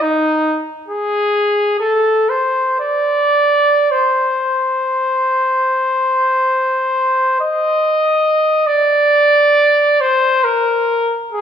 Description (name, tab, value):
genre	classical, free, expressive piece for unaccompanied trumpet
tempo	40-72 BPM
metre	4/4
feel	rubato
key	C minor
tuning	A4 = 439 Hz
part	clear trumpet	solo	0.0-11.4 s	Eb4 to Eb5	-13 LUFS	equal	none
room	wet recital hall reverb, RT60 1.6 s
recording	small room ambience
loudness	-12 LUFS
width	side -8 dB against mid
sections	0.0-8.7 A section; 8.7-11.4 B section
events	none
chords	none